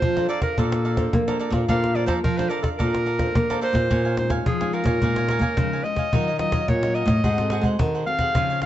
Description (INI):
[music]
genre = samba and choro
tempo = 108 BPM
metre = 4/4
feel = straight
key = Bb major, Bb minor from 3.9 s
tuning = A4 = 440 Hz
[part]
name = bright clarinet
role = melody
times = 0.0-8.7 s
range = Ab4 to F5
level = -26 LUFS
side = equal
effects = plate reverb
[part]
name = nylon-string guitar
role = accompaniment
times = 0.0-8.7 s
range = Bb2 to C5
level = -30 LUFS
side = left 2 dB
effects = none
[part]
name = nylon-string guitar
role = bass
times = 0.0-8.7 s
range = Ab2 to Bb3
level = -23 LUFS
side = equal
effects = none
[part]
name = cajon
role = drums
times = 0.0-8.7 s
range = none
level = -25 LUFS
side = equal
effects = none
[part]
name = cavaquinho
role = accompaniment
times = 0.2-8.7 s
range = F4 to Bb5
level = -31 LUFS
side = right 5 dB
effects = none
[sound]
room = light reverb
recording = dark, warm production, nothing above 8.0 kHz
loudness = -20 LUFS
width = side -12 dB against mid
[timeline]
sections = 0.0-3.9 A section; 3.9-8.7 B section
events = none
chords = 0.0 Bbmaj9; 3.9 Bbm7; 6.1 Ebm9; 7.2 Ab7b9